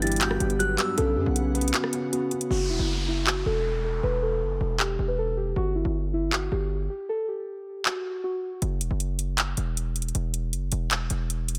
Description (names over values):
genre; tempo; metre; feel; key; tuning
hip hop, trap; 157 BPM; 4/4; half-time; unclear; A4 = 440 Hz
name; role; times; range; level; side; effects
muted felt-like synth keys; melody; 0.0-8.6 s; E4 to B4; -32 LUFS; equal; chorus, low-pass filter, tape echo
delicate synth tine bell; second line; 0.0-1.0 s; E6 to A6; -34 LUFS; equal; chorus, phaser, tape echo
felt-muted upright piano; accompaniment; 0.0-2.5 s; G2 to B3; -32 LUFS; equal; low-pass filter
glassy FM pad; sustained chords; 0.0-2.5 s; B3 to F#5; -38 LUFS; equal; ensemble chorus, built-in reverb
distorted 808-style bass; bass; 0.0-11.6 s; E1 to F#2; -30 LUFS; equal; distortion
trap drum kit; drums; 0.0-11.6 s; handclaps, hi-hat, rim click; -29 LUFS; equal; none
downlifter; sound effects; 2.5-5.6 s; none; -38 LUFS; equal; none
room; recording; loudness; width
digital ambience; none; -27 LUFS; mono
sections
0.0-2.5 A section; 2.5-11.6 B section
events
break 1.7-2.5, 2.5-8.6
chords
0.0 Gmaj7; 1.0 Bsus2; 2.5 Esus4; 5.6 Emadd9/G; 7.1 N.C.; 8.6 Esus2